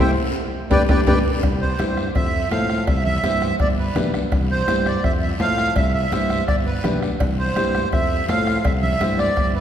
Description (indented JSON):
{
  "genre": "latin, cumbia",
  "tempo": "166 BPM",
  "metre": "4/4",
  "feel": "straight",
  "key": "C major",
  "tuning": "A4 = 440 Hz",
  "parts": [
    { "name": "accordion", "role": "melody", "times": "0.0-9.6 s", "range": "B4 to G5", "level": "-23 LUFS", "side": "right 2 dB", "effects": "light tremolo tuning" },
    { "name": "clear upright piano", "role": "accompaniment", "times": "0.0-9.3 s", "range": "D4 to C5", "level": "-27 LUFS", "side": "left 4 dB", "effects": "none" },
    { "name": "sustaining fretless electric bass", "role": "bass", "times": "0.0-9.6 s", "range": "G1 to A2", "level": "-24 LUFS", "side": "equal", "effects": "none" },
    { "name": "bombo", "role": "percussion", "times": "0.7-9.5 s", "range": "none", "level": "-23 LUFS", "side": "left 1 dB", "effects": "none" },
    { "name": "congas", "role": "percussion", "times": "0.7-9.4 s", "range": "none", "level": "-29 LUFS", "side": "right 2 dB", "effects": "none" },
    { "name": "guiro", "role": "percussion", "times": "0.7-9.6 s", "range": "none", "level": "-38 LUFS", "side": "left 4 dB", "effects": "none" },
    { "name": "timbales and cowbell", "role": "percussion", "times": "0.7-9.5 s", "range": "none", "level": "-32 LUFS", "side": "right 3 dB", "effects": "none" }
  ],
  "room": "wet church reverb, RT60 2.7 s",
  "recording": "recorded in a church or concert hall",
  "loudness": "-17 LUFS",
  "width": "side -9 dB against mid",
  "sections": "0.0-1.4 A section; 1.4-9.6 B section",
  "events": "band accent 0.0-1.4; accordion solo 0.0-1.4; drum fill 0.4-1.4",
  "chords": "0.0 C; 0.7 G; 1.4 C; 2.2 F; 2.9 C; 3.6 G; 4.3 C; 5.0 F; 5.8 C; 6.5 G; 7.2 C; 7.9 F; 8.6 C"
}